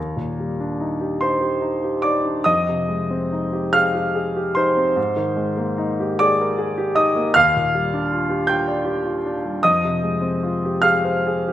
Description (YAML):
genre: classical, impressionist solo piano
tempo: 45-53 BPM (dotted quarters)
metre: 6/8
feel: rubato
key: Eb major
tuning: A4 = 441 Hz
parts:
  - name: warm concert grand piano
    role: solo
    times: 0.0-11.5 s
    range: Eb2 to G6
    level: -18 LUFS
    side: equal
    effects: none
room: moderate recital hall reverb, RT60 1.4 s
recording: none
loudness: -18 LUFS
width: side -12 dB against mid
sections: 0.0-11.5 A section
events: none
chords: 0.0 Ebmaj7; 2.5 Fm9; 5.0 Abmaj9; 7.3 Ebmaj9; 9.6 Fm9